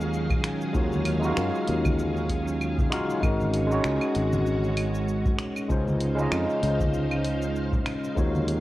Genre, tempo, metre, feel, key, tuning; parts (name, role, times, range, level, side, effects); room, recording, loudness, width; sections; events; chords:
sunset chillout; 97 BPM; 4/4; swing 56% on 16ths; A4 = 442 Hz
overdriven tine electric piano; accompaniment; 0.0-8.6 s; Ab3 to F5; -28 LUFS; equal; auto-pan, ping-pong delay
soft string machine; sustained chords; 0.0-8.6 s; Db3 to F5; -31 LUFS; equal; ensemble chorus
sustaining fretless electric bass; bass; 0.0-8.6 s; Ab1 to Gb2; -28 LUFS; equal; wide subtle chorus
deep house drum kit; drums; 0.0-8.6 s; claves, finger snaps, hi-hat, shaker; -34 LUFS; equal
electronic kick drum; drums; 0.3-8.3 s; -27 LUFS; equal
congas; percussion; 0.3-8.5 s; -34 LUFS; right 1 dB
light reverb, digital ambience; worn, warbling old tape, cassette tape, warbly pitch drift; -23 LUFS; side -16 dB against mid
0.0-8.6 A section
0.0 Ebm11; 3.2 Ab9sus4; 5.7 Dbmaj9